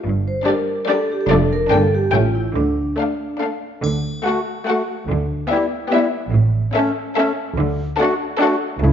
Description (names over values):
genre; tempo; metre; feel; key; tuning
cinematic, playful, whimsical film cue; 144 BPM; 3/4; straight; D minor, D major from 3.8 s; A4 = 439 Hz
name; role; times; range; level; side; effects
vibraphone with medium mallets; melody; 0.0-3.4 s; D4 to C5; -21 LUFS; equal; none
bright studio cello section; bass; 0.1-8.9 s; F2 to D3; -21 LUFS; right 2 dB; none
rich studio double bass section; bass; 0.1-8.9 s; F1 to D2; -22 LUFS; right 3 dB; none
rich studio violin section; melody; 0.5-8.7 s; D5 to G5; -25 LUFS; left 4 dB; none
rich studio violin section; second line; 0.5-8.7 s; C#4 to A4; -25 LUFS; left 6 dB; none
clear studio viola section; accompaniment; 0.5-8.7 s; G3 to D4; -24 LUFS; equal; none
triangle; percussion; 3.8-4.6 s; none; -36 LUFS; left 2 dB; none
mellow bassoon; accompaniment; 4.2-8.9 s; G3 to A3; -25 LUFS; right 1 dB; none
clear clarinet; second line; 4.3-8.9 s; C#4 to F#4; -24 LUFS; left 3 dB; none
room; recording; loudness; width
moderate scoring stage reverb, RT60 1.6 s; dark, warm production, nothing above 7.6 kHz; -17 LUFS; side -8 dB against mid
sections
0.0-3.8 A section; 3.8-8.9 B section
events
none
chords
0.1 Gm; 1.3 Dm/F; 1.7 Gm; 2.1 A7; 2.6 Dm; 5.1 Em/D; 6.3 A; 7.6 D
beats
| 0.05 0.47 0.89 | 1.30 1.72 2.14 | 2.56 2.98 3.41 | 3.83 4.25 4.67 | 5.09 5.51 5.92 | 6.33 6.75 7.17 | 7.58 8.00 8.41 | 8.82